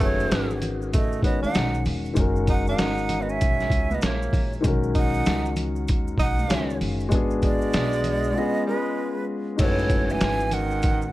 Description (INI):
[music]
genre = hip hop, jazz-hop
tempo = 97 BPM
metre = 4/4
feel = swing 63% on 16ths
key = unclear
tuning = A4 = 437 Hz
[part]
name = breathy jazz flute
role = melody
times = 0.0-11.1 s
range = B4 to G#5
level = -29 LUFS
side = right 2 dB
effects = tape echo, plate reverb
[part]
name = breathy tenor saxophone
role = second line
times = 0.0-11.1 s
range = A2 to D#4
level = -30 LUFS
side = right 3 dB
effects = plate reverb
[part]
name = dark baby grand piano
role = accompaniment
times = 0.0-11.1 s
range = D#3 to C#5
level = -27 LUFS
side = left 3 dB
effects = plate reverb
[part]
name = upright bass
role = bass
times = 0.0-11.1 s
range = E1 to D#2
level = -28 LUFS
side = equal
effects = none
[part]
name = boom bap sampler-style drum kit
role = drums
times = 0.0-11.0 s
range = crash cymbal, hi-hat, kick drum, snare drum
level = -24 LUFS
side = equal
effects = none
[part]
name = maracas and congas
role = percussion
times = 0.0-11.1 s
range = none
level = -36 LUFS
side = right 2 dB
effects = none
[sound]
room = light reverb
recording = dark, warm production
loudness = -21 LUFS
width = side -16 dB against mid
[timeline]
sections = 0.0-9.6 A section; 9.6-11.1 B section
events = break 8.4-9.6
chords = 0.0 F#m69; 2.2 F#69; 7.1 G#m7b5; 8.4 C#7; 9.6 F#m69